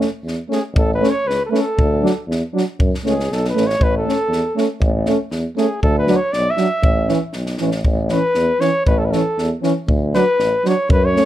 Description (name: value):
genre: balkan folk, Balkan brass band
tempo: 118 BPM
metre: 2/4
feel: straight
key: A major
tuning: A4 = 439 Hz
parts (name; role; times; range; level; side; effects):
- mellow French horn; accompaniment; 0.0-11.2 s; C#4 to D4; -22 LUFS; left 6 dB; none
- mellow euphonium; accompaniment; 0.0-11.3 s; E3 to A3; -20 LUFS; right 5 dB; none
- compact cocktail drum kit; percussion; 0.0-11.2 s; kick drum, snare drum; -20 LUFS; equal; none
- clear tuba; bass; 0.2-11.2 s; A1 to F#2; -21 LUFS; equal; none
- mellow flugelhorn; melody; 0.5-11.3 s; G#4 to E5; -19 LUFS; equal; plate reverb
room: light reverb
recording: none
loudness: -15 LUFS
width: side -13 dB against mid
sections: 0.0-11.3 A section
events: flugelhorn solo 0.0-11.3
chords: 0.0 A; 1.8 D; 2.8 F#m; 3.8 A; 5.8 D; 6.8 A; 9.9 D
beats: 0.24 | 0.75 1.26 | 1.76 2.27 | 2.78 3.29 | 3.80 4.30 | 4.81 5.32 | 5.83 6.33 | 6.84 7.35 | 7.86 8.36 | 8.87 9.38 | 9.88 10.39 | 10.89